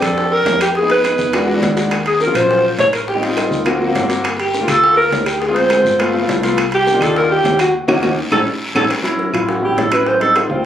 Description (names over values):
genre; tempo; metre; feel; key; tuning
Afro-Cuban jazz; 206 BPM; 4/4; straight; unclear; A4 = 440 Hz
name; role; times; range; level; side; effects
breathy alto saxophone; melody; 0.0-10.7 s; C4 to Db5; -15 LUFS; right 1 dB; plate reverb
dark concert grand piano; accompaniment; 0.0-10.6 s; Gb3 to Ab4; -18 LUFS; left 2 dB; none
fingered electric bass; bass; 0.0-10.7 s; G1 to F2; -25 LUFS; equal; none
bongos; percussion; 0.0-10.7 s; none; -25 LUFS; left 4 dB; none
claves; percussion; 0.0-10.5 s; none; -27 LUFS; right 2 dB; none
guiro; percussion; 0.0-8.8 s; none; -28 LUFS; left 2 dB; none
timbales; percussion; 0.0-10.5 s; none; -24 LUFS; right 4 dB; none
room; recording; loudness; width
moderate small room ambience, RT60 0.5 s; recorded on a phone in the room, club reverb; -13 LUFS; side -10 dB against mid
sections
0.0-8.9 A section; 8.9-10.7 B section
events
band accent 7.7-8.9; drum fill 8.2-8.9; alto saxophone solo 8.9-10.7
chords
0.0 Bb69; 0.8 Fm7b5; 1.3 E9; 1.9 Ebm9; 3.1 Am7b5; 3.7 D7alt; 4.2 Gm9; 5.4 Dm7b5; 6.0 G7; 6.6 Cm11; 7.7 Ebm7; 8.3 A7; 8.9 A6; 10.1 Am7b5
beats
0.17 0.46 | 0.76 1.05 1.34 1.63 | 1.92 2.21 2.50 2.79 | 3.08 3.38 3.67 3.96 | 4.25 4.54 4.83 5.12 | 5.41 5.70 6.00 6.29 | 6.58 6.87 7.16 7.45 | 7.74 8.03 8.32 8.61 | 8.90 9.19 9.48 9.78 | 10.07 10.36 10.65